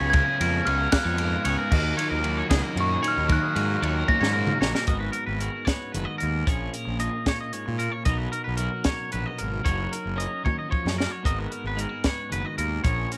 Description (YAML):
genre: math rock and midwest emo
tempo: 76 BPM (dotted quarters)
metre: 6/8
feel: straight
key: unclear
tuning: A4 = 437 Hz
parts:
  - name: glockenspiel with rubber mallets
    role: melody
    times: 0.0-4.6 s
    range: C#6 to A#6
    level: -29 LUFS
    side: equal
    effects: none
  - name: twelve-string electric guitar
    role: accompaniment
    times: 0.0-13.2 s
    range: G#2 to B4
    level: -36 LUFS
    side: equal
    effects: none
  - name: twangy electric guitar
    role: arpeggios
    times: 0.0-13.2 s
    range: G#4 to D#5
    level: -33 LUFS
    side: equal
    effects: subtle chorus
  - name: overdriven electric guitar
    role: riff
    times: 0.0-4.9 s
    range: C#3 to E#4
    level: -35 LUFS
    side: equal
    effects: none
  - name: fuzz fingered electric bass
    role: bass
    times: 0.0-13.0 s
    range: F#1 to A#2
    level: -31 LUFS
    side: equal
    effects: overdrive
  - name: compact cocktail drum kit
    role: drums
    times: 0.1-13.2 s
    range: crash cymbal, hi-hat, kick drum, ride cymbal, snare drum, toms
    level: -29 LUFS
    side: equal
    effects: none
room: small room ambience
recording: none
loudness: -25 LUFS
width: mono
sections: 0.0-4.9 A section; 4.9-13.2 B section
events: drum fill 4.1-4.9, 10.5-11.3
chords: 0.0 C#7sus4; 1.7 D#m9; 4.9 G#m11; 6.5 A#m7; 8.1 Bmaj9; 9.7 F#6; 11.3 G#m11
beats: | 0.13 0.93 | 1.72 2.51 | 3.30 4.09 | 4.89 5.68 | 6.48 7.27 | 8.07 8.86 | 9.66 10.46 | 11.25 12.05 | 12.85